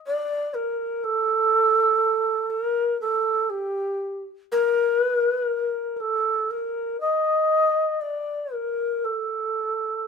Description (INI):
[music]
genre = japanese traditional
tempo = 60 BPM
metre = 4/4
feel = rubato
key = unclear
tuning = A4 = 440 Hz
[part]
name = breathy reedy long shakuhachi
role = solo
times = 0.1-10.1 s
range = G4 to Eb5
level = -21 LUFS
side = equal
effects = none
[sound]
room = moderate studio reverb, RT60 0.9 s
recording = minimal, uncompressed stereo recording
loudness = -21 LUFS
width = side -6 dB against mid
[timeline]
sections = 0.0-10.1 A section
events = none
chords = none